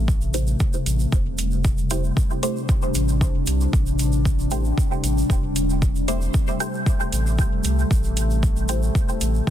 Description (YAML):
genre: dub techno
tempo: 115 BPM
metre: 4/4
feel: straight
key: unclear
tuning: A4 = 441 Hz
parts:
  - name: warbly tape-like pad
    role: sustained chords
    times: 0.0-9.5 s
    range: C3 to D4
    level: -26 LUFS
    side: left 2 dB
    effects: chorus, built-in reverb, sidechain pumping
  - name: warm sub bass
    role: bass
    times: 0.0-9.5 s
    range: E1 to C2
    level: -23 LUFS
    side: equal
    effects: tube saturation, sidechain pumping
  - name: electronic kick drum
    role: drums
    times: 0.1-9.5 s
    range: none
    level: -21 LUFS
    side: equal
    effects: overdrive, small room ambience
  - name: tube shaker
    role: percussion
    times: 0.1-9.4 s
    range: none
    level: -35 LUFS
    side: right 5 dB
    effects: none
  - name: filtered dub chord stab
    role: stabs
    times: 0.3-8.8 s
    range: A3 to C5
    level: -30 LUFS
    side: right 1 dB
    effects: phaser, sidechain pumping, dub echo
  - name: electronic hi-hat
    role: drums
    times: 0.3-9.3 s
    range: none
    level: -29 LUFS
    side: right 2 dB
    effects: overdrive, small room ambience
room: digital ambience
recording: dense, heavily limited modern master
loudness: -19 LUFS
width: side -11 dB against mid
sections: 0.0-9.5 A section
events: none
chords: 0.0 Am7